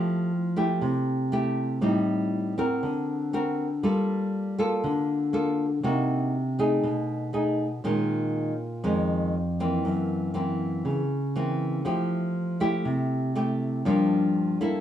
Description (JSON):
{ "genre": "bossa nova", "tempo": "120 BPM", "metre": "4/4", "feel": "straight", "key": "F major", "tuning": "A4 = 440 Hz", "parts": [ { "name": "nylon-string guitar", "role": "solo", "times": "0.0-14.8 s", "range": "F2 to Bb4", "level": "-24 LUFS", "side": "equal", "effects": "none" } ], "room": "moderate stone room reverb, RT60 1.0 s", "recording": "band playing live in one room, small room ambience", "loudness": "-24 LUFS", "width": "side -10 dB against mid", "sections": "0.0-14.8 A section", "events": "none", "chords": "0.0 Fmaj9; 1.8 Am7b5; 2.8 Daug7; 3.8 Gm9; 5.8 Cm7b5; 6.8 B6; 7.8 Bbm11; 9.8 Gb7#11; 11.8 Fmaj9; 13.9 Gm7", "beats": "0.32 0.82 1.32 | 1.82 2.33 2.83 3.33 | 3.83 4.33 4.83 5.33 | 5.83 6.34 6.84 7.34 | 7.84 8.34 8.84 9.34 | 9.84 10.34 10.85 11.35 | 11.85 12.35 12.85 13.35 | 13.85 14.35" }